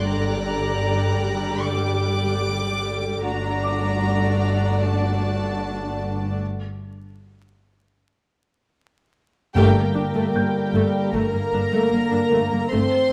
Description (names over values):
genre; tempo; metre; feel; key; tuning
cinematic; 76 BPM; 4/4; straight; G harmonic minor; A4 = 440 Hz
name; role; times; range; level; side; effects
rich studio violin section; melody; 0.0-13.1 s; G5 to D6; -32 LUFS; equal; none
warm studio violin section; second line; 0.0-13.1 s; F#4 to D5; -30 LUFS; equal; none
rich studio viola section; accompaniment; 0.0-13.1 s; D3 to Bb4; -29 LUFS; equal; none
dark studio cello section; bass; 0.0-12.8 s; G2; -30 LUFS; equal; none
warm studio double bass section; bass; 0.0-12.8 s; G1; -28 LUFS; equal; none
felt-muted upright piano; texture; 0.0-12.7 s; D6 to G6; -38 LUFS; equal; none
rich studio violin section; texture; 0.0-2.8 s; D6 to F#6; -38 LUFS; equal; none
mellow French horn section; sustained chords; 9.5-13.1 s; G3 to C4; -28 LUFS; equal; none
timpani; percussion; 9.5-10.7 s; G2; -29 LUFS; equal; none
mellow trombone section; sustained chords; 9.6-13.1 s; D3 to Bb3; -29 LUFS; equal; none
room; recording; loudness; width
moderate scoring stage reverb, RT60 1.8 s; vinyl crackle; -22 LUFS; mono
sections
0.0-9.6 A section; 9.6-13.1 B section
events
break 6.4-9.6; band accent 9.6-10.3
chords
0.1 Gm; 3.2 D/G; 6.4 N.C.; 9.6 Gmadd9